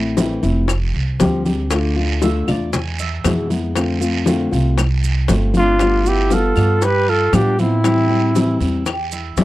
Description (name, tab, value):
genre	latin, Cuban son and guajira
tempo	117 BPM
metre	4/4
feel	straight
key	unclear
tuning	A4 = 439 Hz
part	nylon-string guitar	accompaniment	0.0-9.4 s	B2 to G4	-20 LUFS	left 2 dB	none
part	upright bass	bass	0.0-9.4 s	F1 to A2	-19 LUFS	right 1 dB	none
part	bongos	percussion	0.2-9.4 s	none	-22 LUFS	left 5 dB	none
part	congas	percussion	0.2-9.4 s	none	-23 LUFS	left 1 dB	none
part	guiro	percussion	0.2-9.4 s	none	-31 LUFS	right 8 dB	none
part	maracas	percussion	0.2-9.4 s	none	-31 LUFS	right 10 dB	none
part	claves	percussion	0.7-9.1 s	none	-30 LUFS	left 14 dB	none
part	Cuban tres	arpeggios	2.2-9.4 s	C4 to G#5	-31 LUFS	right 4 dB	none
part	breathy trumpet	melody	5.6-8.6 s	E4 to B4	-17 LUFS	left 1 dB	none
part	mellow hollow jazz flute	second line	5.6-8.6 s	C4 to G4	-23 LUFS	right 7 dB	none
room	little or no reverb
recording	dry, close 1970s-style studio recording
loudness	-15 LUFS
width	side -16 dB against mid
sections	0.0-5.8 A section; 5.8-9.4 B section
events	Cuban tres solo 0.0-5.8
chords	0.0 Am; 0.7 Fsus2; 1.7 Dm; 2.7 E; 3.8 F6; 5.8 G7; 7.8 Am7